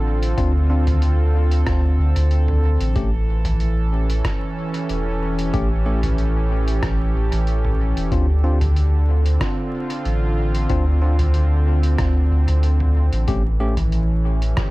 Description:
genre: ambient dub.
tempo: 93 BPM.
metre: 4/4.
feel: swing 53% on 16ths.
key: D minor.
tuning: A4 = 440 Hz.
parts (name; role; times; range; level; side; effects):
warm analog pad; sustained chords; 0.0-14.7 s; D3 to A4; -25 LUFS; right 1 dB; chorus, vintage 12-bit sampler grit.
soft dub sub bass; bass; 0.0-14.5 s; E1 to D2; -17 LUFS; equal; none.
lo-fi sampler-style drum kit; drums; 0.2-14.7 s; hi-hat, rim click, toms; -29 LUFS; equal; dub echo.
bell-like tine electric piano; stabs; 0.4-13.7 s; A3 to G4; -30 LUFS; left 2 dB; auto-pan, dub echo.
electronic kick drum; drums; 0.4-14.7 s; none; -25 LUFS; equal; none.
room: little or no reverb.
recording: dark, warm production, vinyl crackle.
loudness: -17 LUFS.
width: side -20 dB against mid.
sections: 0.0-14.7 A section.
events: none.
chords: 0.0 Dm7; 3.0 A7; 8.1 Dm7; 13.3 A7.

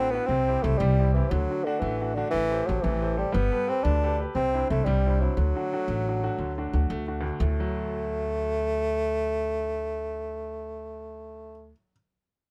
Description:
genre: celtic folk, Celtic slide.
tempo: 118 BPM (dotted quarters).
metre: 12/8.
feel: straight.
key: D mixolydian.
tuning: A4 = 440 Hz.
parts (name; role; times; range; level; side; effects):
warm bassoon; melody; 0.0-11.7 s; D3 to D4; -30 LUFS; equal; none.
bright upright piano; accompaniment; 0.0-11.9 s; D2 to C5; -35 LUFS; equal; none.
upright bass; bass; 0.0-11.7 s; G1 to D2; -30 LUFS; equal; none.
room: little or no reverb.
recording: close, detailed microphones.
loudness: -27 LUFS.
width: mono.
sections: 0.0-7.4 A section; 7.4-11.5 B section.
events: none.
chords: 0.3 C; 1.3 D; 2.3 Am7; 3.3 Gadd9; 4.4 Cadd9; 5.4 D.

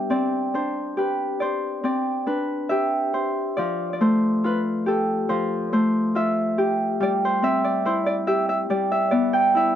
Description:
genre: children's music.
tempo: 70 BPM.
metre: 4/4.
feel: straight.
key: C major.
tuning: A4 = 440 Hz.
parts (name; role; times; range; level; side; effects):
Celtic harp; solo; 0.0-9.8 s; F3 to G5; -20 LUFS; equal; none.
room: little or no reverb.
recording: dry, close 1970s-style studio recording.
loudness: -20 LUFS.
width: side -10 dB against mid.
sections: 0.1-9.8 A section.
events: none.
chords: 0.1 Csus2; 3.6 Fadd9; 7.0 C/G; 8.7 G6.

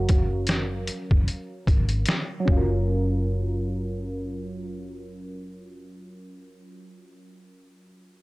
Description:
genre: lo-fi hip hop.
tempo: 75 BPM.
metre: 4/4.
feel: swing 58% on 16ths.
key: F# major.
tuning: A4 = 440 Hz.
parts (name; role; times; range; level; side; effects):
hollow-body jazz guitar; melody; 0.0-2.1 s; F#4; -33 LUFS; right 3 dB; low-pass filter, analog delay.
warm analog keys; accompaniment; 0.0-8.2 s; F#3 to E#5; -32 LUFS; right 1 dB; chorus, cassette tape, low-pass filter.
vintage muted fingered electric bass; bass; 0.0-7.3 s; F#1 to G#1; -27 LUFS; equal; none.
trip hop sampler-style drum kit; drums; 0.1-2.7 s; hi-hat, kick drum, snare drum; -22 LUFS; equal; none.
room: little or no reverb.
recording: dry, gritty hardware recording.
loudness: -23 LUFS.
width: side -22 dB against mid.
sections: 0.0-2.9 A section; 2.9-6.1 B section.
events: filter sweep 0.0-2.9.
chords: 0.0 F#maj7.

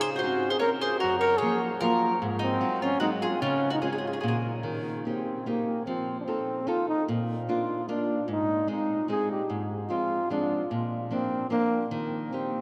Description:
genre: italian folk, Italian serenade.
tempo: 149 BPM.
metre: 3/4.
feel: straight.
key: Db major, Eb major from 4.6 s.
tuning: A4 = 440 Hz.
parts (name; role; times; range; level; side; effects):
clear trombone; melody; 0.0-12.6 s; Bb3 to Bb4; -30 LUFS; equal; none.
mandolin; second line; 0.0-4.4 s; Eb4 to Db5; -34 LUFS; equal; none.
nylon-string guitar; accompaniment; 0.0-12.6 s; Gb2 to F5; -33 LUFS; equal; none.
room: wet cathedral reverb, RT60 7.5 s.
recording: in a vast, echoing space.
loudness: -28 LUFS.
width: mono.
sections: 0.0-4.6 A section; 4.6-12.6 B section.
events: none.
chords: 0.0 Dbmaj7; 1.0 Gbmaj7; 2.2 Ab7; 3.4 Db; 4.2 N.C.; 4.6 Eb; 5.9 F7; 7.1 Bb; 8.3 Ab; 9.5 Fm/Ab; 10.7 Bb; 11.9 Eb.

